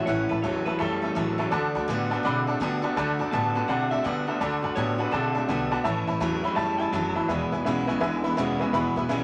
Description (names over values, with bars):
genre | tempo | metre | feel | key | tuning
rockabilly | 166 BPM | 4/4 | swing 64% on 8ths | A major | A4 = 440 Hz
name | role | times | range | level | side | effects
electric guitar through a small old amp | melody | 0.0-7.3 s | A4 to A5 | -34 LUFS | equal | spring reverb
honky-tonk upright piano | accompaniment | 0.0-9.2 s | B4 to B5 | -32 LUFS | equal | none
picked steel-string acoustic guitar | accompaniment | 0.0-9.2 s | E2 to A4 | -32 LUFS | equal | none
electric guitar through a small old amp | riff | 0.0-9.2 s | E2 to C4 | -31 LUFS | equal | none
upright bass | bass | 0.1-9.2 s | E1 to D3 | -37 LUFS | equal | none
room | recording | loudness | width
moderate studio ambience, RT60 0.5 s | none | -26 LUFS | mono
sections
0.0-9.2 A section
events
none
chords
0.0 A; 1.5 D; 5.9 A; 7.3 E